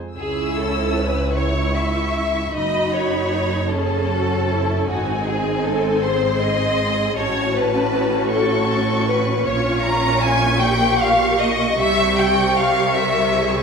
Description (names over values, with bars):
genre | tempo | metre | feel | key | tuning
classical, slow romantic movement for string orchestra | 52 BPM (dotted quarters) | 6/8 | uneven beats, rubato | C# minor | A4 = 440 Hz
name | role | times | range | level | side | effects
warm symphonic violin section | melody | 0.2-13.6 s | G#5 to E6 | -26 LUFS | left 3 dB | none
rich symphonic violin section | second line | 0.2-13.6 s | F#4 to Bb5 | -20 LUFS | left 1 dB | none
warm symphonic viola section | accompaniment | 0.2-13.6 s | G3 to Bb4 | -23 LUFS | right 1 dB | none
clear chamber double bass section | bass | 0.2-13.6 s | F#1 to C#2 | -26 LUFS | right 1 dB | none
rich symphonic cello section | bass | 0.2-13.6 s | C#2 to C3 | -26 LUFS | right 2 dB | none
room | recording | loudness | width
wet recital hall reverb, RT60 1.4 s | minimal, uncompressed stereo recording | -17 LUFS | side -5 dB against mid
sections
0.2-13.6 A section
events
none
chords
0.2 C#m; 2.5 F#m; 4.9 G#; 7.2 A; 9.4 Gdim/Bb; 11.8 C7b9